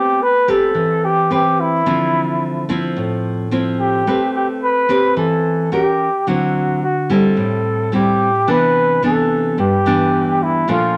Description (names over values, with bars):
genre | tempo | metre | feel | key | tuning
bossa nova | 109 BPM | 4/4 | straight | A minor | A4 = 440 Hz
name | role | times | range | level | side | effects
mellow flugelhorn | melody | 0.0-11.0 s | E4 to B4 | -19 LUFS | equal | none
nylon-string guitar | accompaniment | 0.0-11.0 s | G2 to B4 | -20 LUFS | equal | none
room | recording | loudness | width
wet studio reverb, RT60 0.8 s | none | -17 LUFS | mono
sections
0.0-8.5 A section; 8.5-11.0 B section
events
none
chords
0.0 Am9; 1.9 Dm9; 4.1 Am9; 5.7 Gdim/Db; 6.3 D9; 7.4 Am7; 8.5 Cmaj9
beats
0.20 0.76 1.31 | 1.86 2.41 2.96 3.51 | 4.07 4.62 5.17 5.72 | 6.27 6.83 7.38 7.93 | 8.48 9.03 9.59 10.14 | 10.69